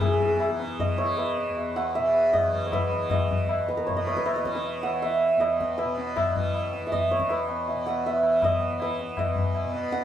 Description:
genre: indian classical, Hindustani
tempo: 158 BPM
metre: 4/4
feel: straight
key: E raga yaman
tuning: A4 = 440 Hz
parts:
  - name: santur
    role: melody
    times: 0.0-10.0 s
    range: G#4 to F#5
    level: -25 LUFS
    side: right 2 dB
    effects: none
  - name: tanpura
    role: drone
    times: 0.0-10.0 s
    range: E2 to E3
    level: -34 LUFS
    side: left 1 dB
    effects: none
  - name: tabla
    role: percussion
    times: 0.0-10.0 s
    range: none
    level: -29 LUFS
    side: left 3 dB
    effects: none
room: moderate studio reverb, RT60 0.8 s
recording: band playing live in one room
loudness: -23 LUFS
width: side -10 dB against mid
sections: 0.0-10.0 A section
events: speeding up 0.0-10.0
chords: none

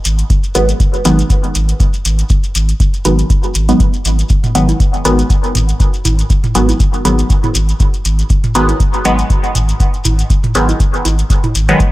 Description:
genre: dub techno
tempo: 120 BPM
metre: 4/4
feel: swing 55% on 16ths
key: G# minor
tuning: A4 = 440 Hz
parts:
  - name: shekere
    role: percussion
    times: 0.0-11.9 s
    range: none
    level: -24 LUFS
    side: left 2 dB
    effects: none
  - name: soft dub sub bass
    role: bass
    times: 0.1-11.7 s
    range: G#1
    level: -14 LUFS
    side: equal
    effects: sidechain pumping
  - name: electronic hi-hat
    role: drums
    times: 0.1-11.9 s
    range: none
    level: -23 LUFS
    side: right 1 dB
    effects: none
  - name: electronic kick drum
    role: drums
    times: 0.3-11.9 s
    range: none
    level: -13 LUFS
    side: equal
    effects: none
  - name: filtered dub chord stab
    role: stabs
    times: 0.6-11.8 s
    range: D#3 to B3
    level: -16 LUFS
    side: equal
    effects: chorus, phaser, sidechain pumping, dub echo
  - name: electronic toms and congas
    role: percussion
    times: 4.4-11.5 s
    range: none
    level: -20 LUFS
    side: right 2 dB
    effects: overdrive, sidechain pumping on perc, sidechain pumping on toms, dub echo
room: little or no reverb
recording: none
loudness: -10 LUFS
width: side -17 dB against mid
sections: 0.0-11.9 A section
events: none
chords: 0.0 G#m7

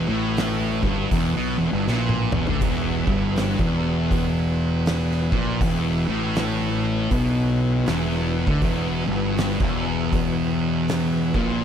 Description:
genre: stoner and doom metal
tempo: 80 BPM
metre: 4/4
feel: swing 62% on 8ths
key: E minor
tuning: A4 = 440 Hz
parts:
  - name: bright tonewheel organ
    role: sustained chords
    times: 0.0-11.6 s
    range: E3 to B4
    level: -34 LUFS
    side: right 1 dB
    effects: slow rotary speaker, overdrive, chorus vibrato
  - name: thick fuzz guitar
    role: riff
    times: 0.0-11.6 s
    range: E2 to D3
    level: -25 LUFS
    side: left 10 dB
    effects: distortion
  - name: thick fuzz guitar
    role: riff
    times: 0.0-11.6 s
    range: E2 to D3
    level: -25 LUFS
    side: right 9 dB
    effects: distortion
  - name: fuzz fingered electric bass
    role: bass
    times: 0.0-11.6 s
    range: E1 to D2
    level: -28 LUFS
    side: equal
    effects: overdrive
  - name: oversized low-tuned drum kit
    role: drums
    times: 0.4-11.5 s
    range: crash cymbal, hi-hat, kick drum, snare drum, toms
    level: -27 LUFS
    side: equal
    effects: none
room: studio reverb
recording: none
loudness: -20 LUFS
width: side -8 dB against mid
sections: 0.0-11.6 A section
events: drum fill 1.9-2.6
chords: 0.0 Em

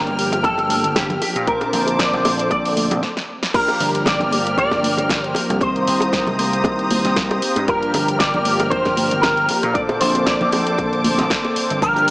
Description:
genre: nu-disco, nu disco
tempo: 116 BPM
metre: 4/4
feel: swing 55% on 16ths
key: G minor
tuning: A4 = 441 Hz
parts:
  - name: electric guitar with an envelope filter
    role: melody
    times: 0.0-12.1 s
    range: G4 to D5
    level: -20 LUFS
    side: equal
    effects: ensemble chorus, tape echo
  - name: mellow synth brass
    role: accompaniment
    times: 0.0-12.1 s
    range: D3 to Bb4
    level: -24 LUFS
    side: equal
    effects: chorus, tape echo
  - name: muted studio string section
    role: sustained chords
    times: 0.0-12.1 s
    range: Bb3 to F6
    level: -24 LUFS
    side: equal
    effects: sidechain pumping
  - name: vintage slap bass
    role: bass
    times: 0.0-12.1 s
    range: G1 to Bb2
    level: -24 LUFS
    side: equal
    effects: sidechain pumping
  - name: house drum kit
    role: drums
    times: 0.1-12.1 s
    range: crash cymbal, hi-hat, rim click, shaker, snare drum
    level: -24 LUFS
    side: equal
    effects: none
  - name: congas and bongos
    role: percussion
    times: 0.2-12.1 s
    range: none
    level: -25 LUFS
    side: equal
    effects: none
  - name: electronic kick drum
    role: drums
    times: 0.4-11.9 s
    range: none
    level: -25 LUFS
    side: equal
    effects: none
room: wet plate reverb, RT60 2.2 s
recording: dreamy mix soaked in reverb, small speaker sound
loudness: -16 LUFS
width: side -22 dB against mid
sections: 0.0-3.5 A section; 3.5-12.1 B section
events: drum fill 3.0-3.5; stop 3.0-3.5; drop 3.5-12.1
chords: 0.0 Gm7; 1.5 Bbmaj9; 3.5 Gm7; 5.6 Cm7; 7.7 Gm7; 9.8 Bbmaj9

